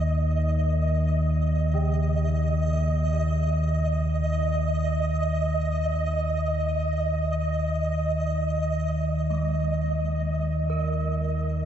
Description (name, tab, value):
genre	dark ambient drone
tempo	free time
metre	none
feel	none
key	unclear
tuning	A4 = 440 Hz
part	deep rumbling drone	drone	0.0-11.7 s	Eb2 to Eb3	-24 LUFS	equal	built-in reverb
part	flickering grainy texture	texture	0.0-11.7 s	Eb5	-29 LUFS	right 2 dB	built-in reverb, shimmer reverb
part	gamelan-type bronze metallophone	arpeggios	1.7-11.7 s	Db3 to Bb4	-40 LUFS	right 2 dB	tape echo, shimmer reverb
room	moderate huge ambient reverb, RT60 8.6 s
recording	dark, warm production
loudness	-23 LUFS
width	side -9 dB against mid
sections	0.0-11.7 A section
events	fade-out on bronze metallophone 0.0-11.7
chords	0.0 Eb5